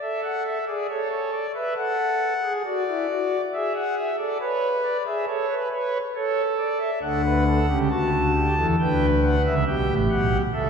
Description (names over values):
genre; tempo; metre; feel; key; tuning
classical, baroque-style 3-part fugue for pipe organ; 68 BPM; 4/4; straight; unclear; A4 = 440 Hz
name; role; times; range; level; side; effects
pipe organ, foundations; solo; 0.0-10.7 s; A1 to A5; -21 LUFS; equal; none
room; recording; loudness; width
wet church reverb, RT60 3.1 s; heard from further back in the room; -21 LUFS; side -6 dB against mid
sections
0.0-10.7 A section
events
none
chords
0.0 A; 1.8 E9; 3.5 E/G#; 5.3 A; 7.0 D; 8.8 Em7